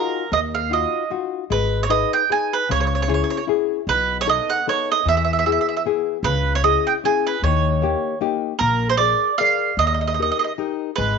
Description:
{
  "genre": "italian folk, Italian serenade",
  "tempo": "152 BPM",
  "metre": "3/4",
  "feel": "swing 55% on 8ths",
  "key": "G# harmonic minor",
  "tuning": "A4 = 440 Hz",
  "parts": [
    { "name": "mandolin", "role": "melody", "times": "0.0-11.2 s", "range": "Bb4 to G#5", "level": "-20 LUFS", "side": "right 7 dB", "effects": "none" },
    { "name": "nylon-string guitar", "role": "accompaniment", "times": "0.0-11.2 s", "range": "B2 to D5", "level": "-24 LUFS", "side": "left 14 dB", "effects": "none" },
    { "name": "upright bass", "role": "bass", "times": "0.3-11.2 s", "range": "G#1 to E2", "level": "-23 LUFS", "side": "left 1 dB", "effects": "none" }
  ],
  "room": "light reverb",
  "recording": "1960s-style stereo with parts hard left and right, nothing above 7.7 kHz",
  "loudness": "-18 LUFS",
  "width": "side -5 dB against mid",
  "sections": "0.0-1.5 A section; 1.5-11.2 B section",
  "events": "none",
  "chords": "0.0 Ebmadd9; 1.5 G#m; 2.7 C#m; 3.9 B7; 5.1 E; 6.2 C#m; 7.4 D#; 8.6 A#7; 9.8 D#"
}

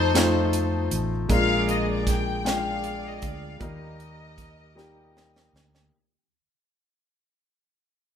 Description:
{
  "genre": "slow gospel",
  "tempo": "52 BPM (dotted quarters)",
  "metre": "6/8",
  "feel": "straight",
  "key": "Eb major",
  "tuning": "A4 = 440 Hz",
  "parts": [
    { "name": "dark chamber string section", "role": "melody", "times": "0.0-5.5 s", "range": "Eb4 to G5", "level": "-28 LUFS", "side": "left 3 dB", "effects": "none" },
    { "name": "warm grand piano", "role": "accompaniment", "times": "0.0-5.9 s", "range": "Bb2 to G5", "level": "-26 LUFS", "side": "left 2 dB", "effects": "none" },
    { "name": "fingered electric bass", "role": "bass", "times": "0.0-5.9 s", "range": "A1 to F2", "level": "-29 LUFS", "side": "equal", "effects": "none" },
    { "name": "crisp fusion drum kit", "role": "drums", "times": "0.2-5.9 s", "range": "hi-hat, kick drum, snare drum", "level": "-26 LUFS", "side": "right 2 dB", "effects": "none" }
  ],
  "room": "moderate large studio reverb, RT60 1.3 s",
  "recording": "band playing live in one room",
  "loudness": "-22 LUFS",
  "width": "side -8 dB against mid",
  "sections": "0.0-5.9 A section",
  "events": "fade-out 0.0-5.9; drum fill 4.8-5.9",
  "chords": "0.0 F7; 1.3 Bb7; 3.6 Ebmaj7"
}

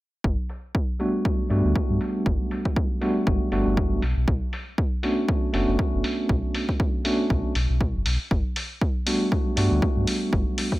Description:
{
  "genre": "deep house",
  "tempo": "119 BPM",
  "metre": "4/4",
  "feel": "swing 56% on 16ths",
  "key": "unclear",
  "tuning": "A4 = 440 Hz",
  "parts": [
    { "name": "sub bass with octave", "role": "bass", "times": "0.2-10.4 s", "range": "F#1 to G2", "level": "-24 LUFS", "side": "equal", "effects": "tube saturation, sidechain pumping" },
    { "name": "electronic kick drum", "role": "drums", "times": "0.2-10.8 s", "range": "none", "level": "-25 LUFS", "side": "equal", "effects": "overdrive" },
    { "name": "electronic hi-hat", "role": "drums", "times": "0.5-10.7 s", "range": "none", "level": "-32 LUFS", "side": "left 1 dB", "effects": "low-pass filter on hats, low-pass filter on room" },
    { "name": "tine electric piano", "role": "stabs", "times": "1.0-10.8 s", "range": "G3 to F#4", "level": "-25 LUFS", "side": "equal", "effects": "medium tremolo, sidechain pumping, low-pass filter, ping-pong delay" }
  ],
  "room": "little or no reverb",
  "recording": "none",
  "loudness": "-22 LUFS",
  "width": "side -18 dB against mid",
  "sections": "0.2-10.8 A section",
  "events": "filter sweep on drum 0.2-10.8",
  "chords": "0.2 Gmaj9; 4.0 Bm9; 8.3 Gmaj9"
}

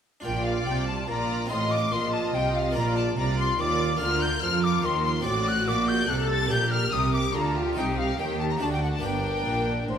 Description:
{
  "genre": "classical, baroque-style concerto movement with solo episodes",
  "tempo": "144 BPM",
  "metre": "3/4",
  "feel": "straight",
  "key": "Bb major, G minor from 5.3 s",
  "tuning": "A4 = 440 Hz",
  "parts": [
    { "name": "mellow concert flute", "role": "melody", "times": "0.2-10.0 s", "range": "C5 to A6", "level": "-30 LUFS", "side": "left 2 dB", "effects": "none" },
    { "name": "rich studio violin section", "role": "melody", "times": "0.2-10.0 s", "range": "F5 to A6", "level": "-32 LUFS", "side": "left 4 dB", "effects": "none" },
    { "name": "harpsichord", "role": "accompaniment", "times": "0.2-10.0 s", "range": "G2 to F5", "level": "-36 LUFS", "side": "right 1 dB", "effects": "none" },
    { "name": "rich studio violin section", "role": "second line", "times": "0.3-10.0 s", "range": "F#4 to Eb5", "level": "-33 LUFS", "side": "left 2 dB", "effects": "none" },
    { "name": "rich studio viola section", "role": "accompaniment", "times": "0.3-10.0 s", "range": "D4 to A4", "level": "-32 LUFS", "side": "equal", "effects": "none" },
    { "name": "clear chamber double bass section", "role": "bass", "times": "0.3-10.0 s", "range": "G1 to F2", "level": "-30 LUFS", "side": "right 3 dB", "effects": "none" },
    { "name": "dark chamber cello section", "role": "bass", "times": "0.3-10.0 s", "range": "G2 to F3", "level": "-30 LUFS", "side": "right 1 dB", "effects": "none" }
  ],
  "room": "moderate scoring stage reverb, RT60 1.7 s",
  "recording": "none",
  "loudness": "-23 LUFS",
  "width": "side -8 dB against mid",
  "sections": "0.3-10.0 A section",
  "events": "none",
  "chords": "0.3 Bb; 1.5 F7/A; 2.8 Bb; 4.0 Bb/D; 5.3 D7/A; 6.5 Gm/Bb; 7.8 Am7b5/C; 8.6 D; 9.0 Gm"
}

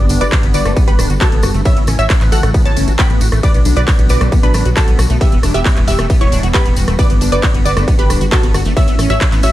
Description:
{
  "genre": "uplifting trance",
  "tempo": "135 BPM",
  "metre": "4/4",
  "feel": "straight",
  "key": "unclear",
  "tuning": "A4 = 440 Hz",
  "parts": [
    { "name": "wide unison pluck", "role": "melody", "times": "0.0-9.5 s", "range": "D4 to B5", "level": "-21 LUFS", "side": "right 1 dB", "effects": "sidechain pumping, tape echo" },
    { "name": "wide unison pluck", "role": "second line", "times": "0.0-9.5 s", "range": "A5 to B6", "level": "-26 LUFS", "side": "right 1 dB", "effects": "sidechain pumping, dub echo" },
    { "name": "filtered supersaw swell", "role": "sustained chords", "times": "0.0-9.5 s", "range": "C#3 to C#4", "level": "-22 LUFS", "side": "equal", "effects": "sidechain pumping" },
    { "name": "liquid acid bass", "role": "arpeggios", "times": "0.0-9.5 s", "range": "A3 to F#4", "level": "-24 LUFS", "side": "left 2 dB", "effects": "phaser, ensemble chorus, sidechain pumping, dub echo" },
    { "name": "tight sequencer bass", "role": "bass", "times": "0.0-9.5 s", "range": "D1 to B1", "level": "-16 LUFS", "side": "equal", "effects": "sidechain pumping" },
    { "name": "techno drum kit", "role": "drums", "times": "0.1-9.5 s", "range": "handclaps, hi-hat, ride cymbal, rim click", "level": "-22 LUFS", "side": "right 1 dB", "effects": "none" },
    { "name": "tambourine", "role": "percussion", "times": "0.1-9.5 s", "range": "none", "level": "-30 LUFS", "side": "left 3 dB", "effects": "none" },
    { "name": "electronic kick drum", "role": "drums", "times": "0.3-9.3 s", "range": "none", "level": "-13 LUFS", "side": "equal", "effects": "distortion" }
  ],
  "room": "little or no reverb",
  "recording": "dark, warm production",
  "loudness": "-10 LUFS",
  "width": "side -14 dB against mid",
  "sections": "0.0-9.5 A section",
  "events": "none",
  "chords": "0.0 G; 1.7 A; 3.4 Bm; 5.2 Em; 7.0 G; 8.8 A"
}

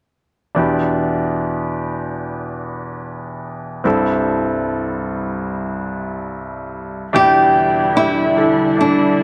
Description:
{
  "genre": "pop",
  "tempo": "73 BPM",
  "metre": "4/4",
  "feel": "straight",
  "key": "E minor",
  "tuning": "A4 = 436 Hz",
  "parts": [
    { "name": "bright grand piano", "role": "accompaniment", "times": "0.5-9.2 s", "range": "C2 to A4", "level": "-22 LUFS", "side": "equal", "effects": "none" },
    { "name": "muted studio string section", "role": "sustained chords", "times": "7.1-9.2 s", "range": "D3 to E4", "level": "-25 LUFS", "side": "equal", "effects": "none" },
    { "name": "flamenco guitar", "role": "melody", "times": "7.2-9.2 s", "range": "D4 to G4", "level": "-16 LUFS", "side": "equal", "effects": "tape echo" }
  ],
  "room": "moderate plate reverb, RT60 2.5 s",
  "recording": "none",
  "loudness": "-18 LUFS",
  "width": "mono",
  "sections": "0.6-7.1 A section; 7.1-9.2 B section",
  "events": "none",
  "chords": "0.6 Em7; 3.8 C6; 7.1 Em7"
}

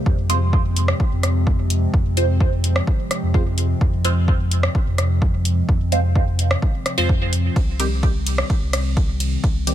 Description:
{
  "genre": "dub techno",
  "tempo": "128 BPM",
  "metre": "4/4",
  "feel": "straight",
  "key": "unclear",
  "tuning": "A4 = 440 Hz",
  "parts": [
    { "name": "warbly tape-like pad", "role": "sustained chords", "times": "0.0-9.7 s", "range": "C3 to C4", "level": "-27 LUFS", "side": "left 1 dB", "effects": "chorus, built-in reverb, sidechain pumping" },
    { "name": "warm sub bass", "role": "bass", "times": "0.1-9.7 s", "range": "C2 to F2", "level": "-20 LUFS", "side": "equal", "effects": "sidechain pumping" },
    { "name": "electronic kick drum", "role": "drums", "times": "0.1-9.5 s", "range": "none", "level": "-19 LUFS", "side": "equal", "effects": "none" },
    { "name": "filtered dub chord stab", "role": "stabs", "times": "0.3-9.7 s", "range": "Eb3 to C5", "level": "-26 LUFS", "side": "right 3 dB", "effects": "phaser, sidechain pumping, dub echo" },
    { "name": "deep house drum kit", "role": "drums", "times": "0.3-9.7 s", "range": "hi-hat, ride cymbal, rim click", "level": "-25 LUFS", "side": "equal", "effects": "none" }
  ],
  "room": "little or no reverb",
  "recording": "none",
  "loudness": "-17 LUFS",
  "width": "side -12 dB against mid",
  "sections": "0.0-9.7 A section",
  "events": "none",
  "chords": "0.1 Fm; 7.6 Cm"
}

